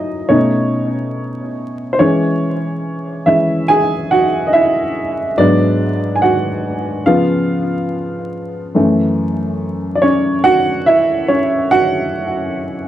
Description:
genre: hip hop.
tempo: 71 BPM.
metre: 4/4.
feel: swing 61% on 16ths.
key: F# minor.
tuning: A4 = 440 Hz.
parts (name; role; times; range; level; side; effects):
warm upright piano; solo; 0.0-12.9 s; F#2 to G#5; -13 LUFS; equal; cassette tape, analog delay.
room: moderate studio reverb, RT60 0.6 s.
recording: vinyl crackle.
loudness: -13 LUFS.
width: side -12 dB against mid.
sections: 0.0-12.9 A section.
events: upright piano solo 0.0-12.9.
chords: 0.3 B9; 2.0 E6; 5.4 G#m7b5; 7.1 C#7; 8.7 F#m7.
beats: 0.30 1.14 | 1.99 2.83 3.68 4.52 | 5.37 6.21 7.06 7.90 | 8.75 9.59 10.44 11.28 | 12.13.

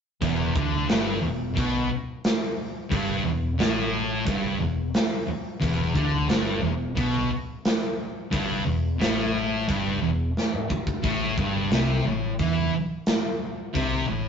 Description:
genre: blues rock power trio and southern rock.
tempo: 89 BPM.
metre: 4/4.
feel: straight.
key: unclear.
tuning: A4 = 440 Hz.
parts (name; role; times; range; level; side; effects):
thick fuzz guitar; riff; 0.2-14.3 s; E2 to E3; -25 LUFS; equal; distortion.
vintage muted fingered electric bass; bass; 0.2-14.3 s; E1 to E2; -31 LUFS; left 1 dB; none.
big rock drum kit; drums; 0.2-13.9 s; hi-hat, kick drum, snare drum, toms; -27 LUFS; equal; none.
room: moderate stone room reverb, RT60 1.1 s.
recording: rough rehearsal-room recording, tube saturation, nothing above 7.6 kHz.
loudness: -23 LUFS.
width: side -7 dB against mid.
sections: 0.2-14.3 A section.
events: drum fill 10.4-11.0.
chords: 0.2 E5; 11.0 A5.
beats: | 0.21 0.89 1.56 2.24 | 2.91 3.59 4.26 4.94 | 5.62 6.29 6.97 7.65 | 8.32 9.00 9.68 10.36 | 11.03 11.71 12.39 13.07 | 13.75.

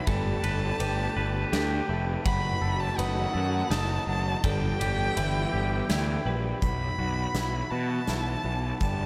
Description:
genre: post-rock.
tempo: 82 BPM.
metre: 3/4.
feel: straight.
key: unclear.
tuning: A4 = 441 Hz.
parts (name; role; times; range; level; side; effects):
rich violin; melody; 0.0-9.1 s; F#5 to B5; -36 LUFS; equal; analog delay.
warm studio string section; sustained chords; 0.0-9.1 s; D3 to G4; -39 LUFS; equal; none.
twangy electric guitar; arpeggios; 0.0-9.1 s; B2 to B4; -37 LUFS; equal; analog delay.
twelve-string electric guitar; arpeggios; 0.1-6.6 s; G4 to F#5; -42 LUFS; equal; subtle chorus, analog delay.
fuzz picked electric bass; bass; 0.1-9.1 s; F1 to B2; -31 LUFS; equal; overdrive.
huge arena drum kit; drums; 0.1-9.0 s; hi-hat, kick drum, ride cymbal, snare drum; -36 LUFS; equal; none.
room: moderate huge ambient reverb, RT60 6.9 s.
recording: dreamy mix soaked in reverb.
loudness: -28 LUFS.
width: mono.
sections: 0.0-6.6 A section; 6.6-9.1 B section.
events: none.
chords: 0.1 Gadd9; 2.3 B7/F#; 4.4 Em/G; 6.6 Bsus4.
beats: | 0.08 0.81 1.53 | 2.26 2.99 3.71 | 4.44 5.17 5.90 | 6.63 7.36 8.09 | 8.82.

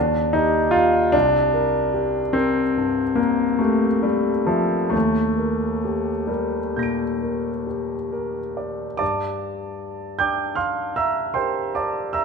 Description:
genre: classical, impressionist solo piano.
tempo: 43-52 BPM (dotted quarters).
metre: 9/8.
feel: rubato.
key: G minor.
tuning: A4 = 444 Hz.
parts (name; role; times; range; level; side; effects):
warm concert grand piano; solo; 0.0-12.2 s; C2 to D7; -19 LUFS; equal; none.
room: moderate recital hall reverb, RT60 1.5 s.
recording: none.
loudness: -19 LUFS.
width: side -5 dB against mid.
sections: 0.0-9.0 A section; 9.0-12.2 B section.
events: none.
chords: 0.0 Ebadd9; 1.1 C7sus2; 4.9 Ebmaj7; 9.0 Gm6.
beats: | 1.14 2.37 3.62 | 4.94 6.30 7.66 | 9.01 10.21 11.37.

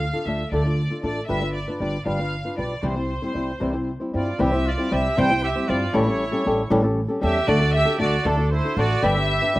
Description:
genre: mexican folk, mariachi.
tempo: 78 BPM (dotted quarters).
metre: 6/8.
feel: straight.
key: C major.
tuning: A4 = 439 Hz.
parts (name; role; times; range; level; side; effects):
rich studio violin section; melody; 0.0-9.6 s; A4 to G5; -26 LUFS; right 1 dB; slapback echo.
flamenco guitar; accompaniment; 0.0-9.6 s; A2 to C5; -23 LUFS; left 1 dB; none.
upright bass; bass; 0.0-9.6 s; G1 to G2; -25 LUFS; right 1 dB; none.
clear trumpet; second line; 4.2-9.6 s; D4 to C5; -29 LUFS; right 3 dB; none.
room: little or no reverb.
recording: recorded outdoors, with no room sound.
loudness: -20 LUFS.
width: side -17 dB against mid.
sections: 0.0-4.4 A section; 4.4-9.6 A section.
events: none.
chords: 0.0 Dm; 1.3 G7; 2.8 C; 6.0 A7; 7.5 D; 9.0 G.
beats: 0.52 | 1.29 2.06 | 2.83 3.62 | 4.40 5.18 | 5.95 6.72 | 7.49 8.26 | 9.04.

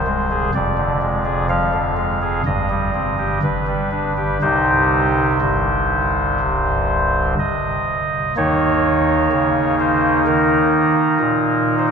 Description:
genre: classical, chorale-style piece for pipe organ.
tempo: 62 BPM.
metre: 4/4.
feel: straight.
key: unclear.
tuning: A4 = 439 Hz.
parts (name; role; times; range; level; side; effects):
chamber organ, soft reed; solo; 0.0-11.9 s; C1 to F5; -16 LUFS; equal; none.
room: wet cathedral reverb, RT60 5.6 s.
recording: minimal, uncompressed stereo recording.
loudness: -16 LUFS.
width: side -6 dB against mid.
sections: 0.0-8.4 A section; 8.4-11.9 B section.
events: none.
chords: 0.0 Ab/C; 0.5 Ddim/F; 2.5 Cm/G; 3.4 G; 4.4 Cm; 8.4 Eb5.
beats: | 0.54 1.49 2.45 3.42 | 4.41 5.41 6.40 7.38 | 8.37 9.32 10.26 11.21.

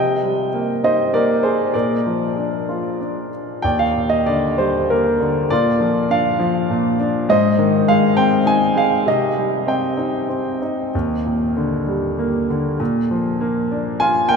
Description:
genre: classical, lyrical solo piano.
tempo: 92-105 BPM.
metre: 3/4.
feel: rubato.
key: Eb major from 3.6 s.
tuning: A4 = 440 Hz.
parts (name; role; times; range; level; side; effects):
warm concert grand piano; solo; 0.0-14.4 s; Eb2 to Ab5; -16 LUFS; equal; none.
room: wet cathedral reverb, RT60 6.3 s.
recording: in a vast, echoing space.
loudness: -16 LUFS.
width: side -5 dB against mid.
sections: 0.0-3.6 A section; 3.6-14.4 B section.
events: none.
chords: 0.0 Cm7; 1.7 Bb; 3.6 Ebmaj7; 5.5 Bb; 7.3 Ab6; 9.1 Cm; 10.9 Ebmaj7; 12.8 Bb.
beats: 0.52 1.13 | 1.74 2.36 3.01 | 3.64 4.27 4.90 | 5.51 6.11 6.70 | 7.29 7.87 8.46 | 9.07 9.67 10.30 | 10.94 11.57 12.19 | 12.80 13.41 14.00.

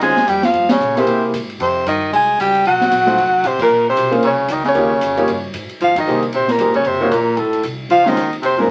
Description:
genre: jazz, small-group swing and bop.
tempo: 228 BPM.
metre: 4/4.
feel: swing 59% on 8ths.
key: Ab major.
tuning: A4 = 440 Hz.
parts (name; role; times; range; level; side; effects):
breathy soprano saxophone; melody; 0.0-8.7 s; A4 to Ab5; -18 LUFS; equal; none.
edgy baritone saxophone; second line; 0.0-8.7 s; A2 to Ab3; -22 LUFS; equal; none.
clear grand piano; accompaniment; 0.0-8.7 s; Ab3 to Db5; -21 LUFS; equal; none.
upright bass; bass; 0.0-8.7 s; F1 to C3; -34 LUFS; equal; none.
open jazz drum kit; drums; 0.0-8.5 s; crash cymbal, hi-hat, kick drum, ride cymbal, snare drum; -28 LUFS; equal; none.
room: moderate studio reverb, RT60 0.5 s.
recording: very old 78 rpm record, vinyl crackle.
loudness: -16 LUFS.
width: mono.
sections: 0.0-5.8 A section; 5.8-8.7 B section.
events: band accent 0.7, 3.6, 5.9.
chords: 0.0 Dbmaj9; 0.5 Gdim; 1.1 C7b13; 1.6 Fm9; 2.6 Cm7b5; 3.2 F; 3.7 Bbmadd9; 4.7 Eb7; 5.8 Abmaj9; 6.8 Ebm7; 7.4 Ab; 7.9 Dbmaj9.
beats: 0.01 0.27 | 0.54 0.80 1.06 1.33 | 1.59 1.85 2.12 2.38 | 2.64 2.91 3.17 3.43 | 3.70 3.96 4.22 4.48 | 4.75 5.01 5.27 5.54 | 5.80 6.06 6.32 6.58 | 6.85 7.11 7.37 7.64 | 7.90 8.16 8.42 8.69.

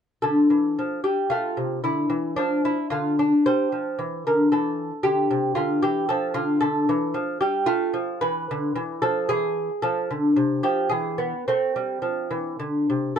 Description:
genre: classical, baroque-style dance for lute.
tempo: 105-117 BPM.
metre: 3/4.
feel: rubato.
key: D minor, A minor from 6.6 s.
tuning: A4 = 440 Hz.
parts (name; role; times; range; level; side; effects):
lute; solo; 0.2-13.2 s; C3 to C5; -21 LUFS; equal; none.
room: light reverb.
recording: close, detailed microphones.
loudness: -21 LUFS.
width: side -8 dB against mid.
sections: 0.2-13.2 A section.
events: none.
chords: 0.2 Dm; 1.8 Dmadd9; 3.5 G5; 5.1 Dm; 8.2 E; 9.8 F; 10.9 N.C.; 11.5 Am.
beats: | 0.22 0.77 1.32 | 1.85 2.38 2.92 | 3.47 4.01 4.54 | 5.06 5.58 6.09 | 6.62 7.14 7.67 | 8.23 8.76 9.30 | 9.84 10.37 10.92 | 11.48 12.05 12.62 | 13.19.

